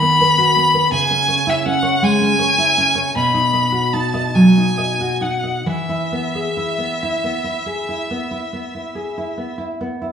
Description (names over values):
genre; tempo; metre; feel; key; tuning
romantic duo for violin and classical guitar; 44-56 BPM (dotted quarters); 12/8; rubato; E major; A4 = 440 Hz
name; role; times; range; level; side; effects
rich violin; melody; 0.0-9.6 s; E5 to B5; -17 LUFS; left 1 dB; none
nylon-string guitar; accompaniment; 0.0-10.1 s; B2 to D#5; -19 LUFS; right 1 dB; none
room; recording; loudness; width
wet large studio reverb, RT60 1.2 s; band playing live in one room; -15 LUFS; side -8 dB against mid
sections
0.0-10.1 A section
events
none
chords
0.0 B/D#; 0.9 C#m; 3.1 B; 5.7 E